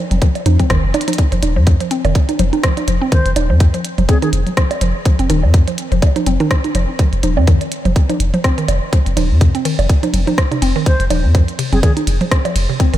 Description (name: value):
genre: minimal techno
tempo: 124 BPM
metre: 4/4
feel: swing 56% on 16ths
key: F minor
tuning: A4 = 440 Hz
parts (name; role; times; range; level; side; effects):
- punchy sub bass; bass; 0.1-13.0 s; Eb1 to F2; -15 LUFS; equal; tube saturation, sidechain pumping
- minimal click drum kit; drums; 0.1-13.0 s; hi-hat, ride cymbal, rim click; -24 LUFS; equal; none
- congas and bongos; percussion; 0.1-12.5 s; none; -22 LUFS; right 4 dB; tape echo
- mallet-like synth pluck; riff; 0.2-13.0 s; C3 to C4; -20 LUFS; equal; chorus, sidechain pumping, diffuse ambient delay
- electronic kick drum; drums; 0.2-12.9 s; none; -14 LUFS; equal; none
- wooden flute; melody; 3.1-4.3, 10.9-11.9 s; Ab4 to C5; -25 LUFS; left 1 dB; vintage 12-bit sampler grit, tape echo
room: little or no reverb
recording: none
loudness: -12 LUFS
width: side -13 dB against mid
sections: 0.0-1.2 A section; 1.2-13.0 B section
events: drum fill 0.9; drop 1.2-13.0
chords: 0.0 F5